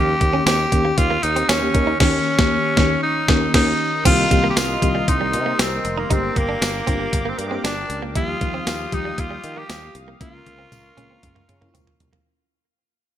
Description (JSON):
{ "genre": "1980s-style pop", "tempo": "117 BPM", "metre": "4/4", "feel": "straight", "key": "unclear", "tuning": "A4 = 440 Hz", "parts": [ { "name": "raspy tenor saxophone", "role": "melody", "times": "0.0-11.7 s", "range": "Ab3 to G4", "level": "-22 LUFS", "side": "equal", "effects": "none" }, { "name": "FM electric piano with soft pad layer", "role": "accompaniment", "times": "0.0-12.3 s", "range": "Eb3 to Bb4", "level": "-24 LUFS", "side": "left 2 dB", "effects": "chorus" }, { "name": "direct-recorded clean electric guitar", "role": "riff", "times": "0.0-12.2 s", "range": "G3 to Eb4", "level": "-29 LUFS", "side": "right 6 dB", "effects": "wide subtle chorus" }, { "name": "sustaining fretless electric bass", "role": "bass", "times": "0.0-12.2 s", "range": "F1 to Eb3", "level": "-27 LUFS", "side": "equal", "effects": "none" }, { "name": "clean 12-bit digital drum machine", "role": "drums", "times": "0.2-12.2 s", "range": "crash cymbal, hi-hat, kick drum, snare drum, tambourine, toms", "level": "-20 LUFS", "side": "equal", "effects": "gated reverb" }, { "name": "tambourine", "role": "percussion", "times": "0.5-11.9 s", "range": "none", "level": "-36 LUFS", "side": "left 8 dB", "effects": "none" }, { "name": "warm analog pad", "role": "sustained chords", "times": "4.1-12.2 s", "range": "G4 to Eb6", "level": "-31 LUFS", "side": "left 1 dB", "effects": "chorus" } ], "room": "light reverb", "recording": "bright 1980s-style digital production", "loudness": "-17 LUFS", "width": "side -11 dB against mid", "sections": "0.0-4.1 A section; 4.1-12.3 B section", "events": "band accent 2.0-4.1; fade-out 4.1-12.3; drum fill 10.2-12.3", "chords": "0.0 Eb7; 4.1 Cm7; 6.1 Gm; 8.2 Ebadd9; 10.2 Bbm/Db" }